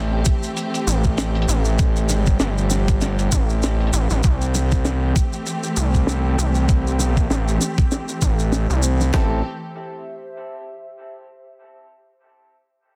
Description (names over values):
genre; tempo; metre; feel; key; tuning
glitch hop; 98 BPM; 4/4; swing 57% on 16ths; A minor pentatonic; A4 = 440 Hz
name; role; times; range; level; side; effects
warm symphonic string section; sustained chords; 0.0-9.4 s; E3 to G4; -30 LUFS; equal; vintage 12-bit sampler grit, sidechain pumping, low-pass filter
gritty driven synth bass; bass; 0.0-9.4 s; G1 to C2; -22 LUFS; equal; distortion, tube saturation
warbly tape-like pad; texture; 0.0-11.6 s; G4 to E5; -40 LUFS; equal; none
deep reggae drum kit; drums; 0.3-9.1 s; hi-hat, snare drum; -28 LUFS; equal; low-pass filter on hats, studio reverb, low-pass filter on snare, low-pass filter on room
dubstep drum kit; drums; 0.3-9.3 s; handclaps, kick drum, snare drum; -21 LUFS; equal; studio reverb
maracas; percussion; 0.3-9.1 s; none; -32 LUFS; equal; none
clear baby grand piano; stabs; 9.1-9.4 s; C4 to A4; -34 LUFS; equal; sidechain pumping, dub echo
room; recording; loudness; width
small room ambience; dense, heavily limited modern master; -20 LUFS; mono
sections
0.0-9.1 A section; 9.1-11.6 B section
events
filter sweep on drum 0.0-9.1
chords
0.0 Am7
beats
0.57 1.18 | 1.79 2.40 3.02 3.63 | 4.24 4.85 5.46 6.08 | 6.69 7.30 7.91 8.53 | 9.14 9.75 10.36 10.97